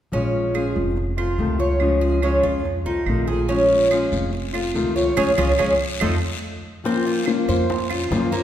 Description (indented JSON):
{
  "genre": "latin, Cuban son and guajira",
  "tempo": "143 BPM",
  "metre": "4/4",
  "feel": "straight",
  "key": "Bb minor",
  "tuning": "A4 = 440 Hz",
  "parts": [
    { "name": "flamenco guitar", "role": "accompaniment", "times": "0.1-8.4 s", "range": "C3 to C5", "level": "-22 LUFS", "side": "left 2 dB", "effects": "none" },
    { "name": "Cuban tres", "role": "arpeggios", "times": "0.1-8.4 s", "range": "Bb3 to Db5", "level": "-23 LUFS", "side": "right 1 dB", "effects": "none" },
    { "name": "upright bass", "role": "bass", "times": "0.1-8.4 s", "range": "F1 to Gb2", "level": "-24 LUFS", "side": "equal", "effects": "none" },
    { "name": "claves", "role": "percussion", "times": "0.6-8.1 s", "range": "none", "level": "-33 LUFS", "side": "right 6 dB", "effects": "none" },
    { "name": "guiro", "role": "percussion", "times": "3.5-8.4 s", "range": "none", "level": "-34 LUFS", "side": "left 4 dB", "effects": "none" },
    { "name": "bongos", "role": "percussion", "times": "6.9-8.4 s", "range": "none", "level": "-29 LUFS", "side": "left 3 dB", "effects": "none" }
  ],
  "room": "wet concert hall reverb, RT60 1.8 s",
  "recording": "recorded in a church or concert hall",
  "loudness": "-18 LUFS",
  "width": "side -11 dB against mid",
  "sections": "0.1-6.9 A section; 6.9-8.4 B section",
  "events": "band accent 5.2-6.9",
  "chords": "0.1 Bbm7; 1.0 F7; 1.8 Db; 2.6 F7; 3.5 Bbm7; 4.3 F7; 5.2 Db; 6.0 F7; 6.9 Bbmadd9",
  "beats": "| 0.12 0.54 0.96 1.39 | 1.81 2.23 2.65 3.07 | 3.49 3.91 4.33 4.75 | 5.17 5.59 6.01 6.43 | 6.85 7.27 7.69 8.11"
}